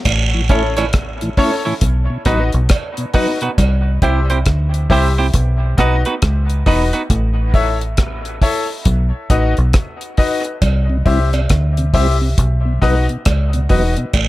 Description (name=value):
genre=dub reggae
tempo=68 BPM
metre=4/4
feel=swing 62% on 16ths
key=unclear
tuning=A4 = 443 Hz
part: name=deep dub fingered electric bass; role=bass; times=0.1-14.3 s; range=E1 to D2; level=-16 LUFS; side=equal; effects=none
part: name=deep reggae drum kit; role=drums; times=0.1-14.3 s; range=hi-hat, kick drum, rim click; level=-17 LUFS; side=equal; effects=none
part: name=cowbell and jawbone-type rattle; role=percussion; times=0.1-3.8, 10.6-14.3 s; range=none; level=-25 LUFS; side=right 6 dB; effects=dub echo
part: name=mellow tonewheel organ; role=accompaniment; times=0.3-3.5, 10.9-14.1 s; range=A2 to E4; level=-23 LUFS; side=left 1 dB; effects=chorus vibrato, slow rotary speaker
part: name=semi-hollow electric guitar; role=accompaniment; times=0.5-7.0 s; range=B3 to C#5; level=-22 LUFS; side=right 4 dB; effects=dub echo
part: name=bright upright piano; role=stabs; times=0.5-14.0 s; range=C#4 to E5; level=-22 LUFS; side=left 3 dB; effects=dub echo
room=studio reverb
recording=none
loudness=-13 LUFS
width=side -17 dB against mid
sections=0.1-14.3 A section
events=part muted 3.6-10.6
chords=0.1 A; 1.8 B; 3.6 C; 5.3 B; 7.1 A; 8.9 B; 10.6 C; 12.4 B